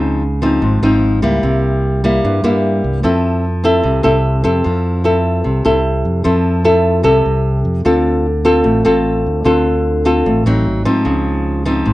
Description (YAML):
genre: bossa nova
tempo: 150 BPM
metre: 4/4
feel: straight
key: F major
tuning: A4 = 444 Hz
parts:
  - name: nylon-string guitar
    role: accompaniment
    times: 0.0-11.9 s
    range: G2 to A4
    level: -13 LUFS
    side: left 1 dB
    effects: none
  - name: fingered electric bass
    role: bass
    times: 0.0-11.9 s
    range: Ab1 to Ab2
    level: -17 LUFS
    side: right 1 dB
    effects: none
room: moderate large studio reverb, RT60 0.9 s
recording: dark, warm production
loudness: -12 LUFS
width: side -17 dB against mid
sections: 0.0-4.6 A section; 4.6-11.9 A section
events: none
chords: 0.0 Dbmaj9; 1.4 C7; 3.0 Fmaj7; 7.9 Dm7; 10.7 Ab7; 11.1 Dbmaj9